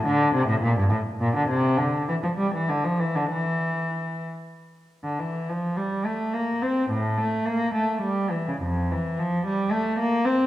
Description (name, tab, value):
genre	classical, baroque-style suite movement for unaccompanied cello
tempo	62-74 BPM (dotted quarters)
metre	6/8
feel	rubato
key	unclear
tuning	A4 = 440 Hz
part	warm cello	solo	0.0-10.5 s	F2 to C4	-22 LUFS	equal	none
room	wet recital hall reverb, RT60 1.8 s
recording	none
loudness	-22 LUFS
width	side -14 dB against mid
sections	0.0-5.2 A section; 5.2-10.5 B section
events	none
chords	none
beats	0.63 | 1.49 2.38 | 3.30 4.25 | 5.18 6.05 | 6.91 7.74 | 8.62 9.45 | 10.27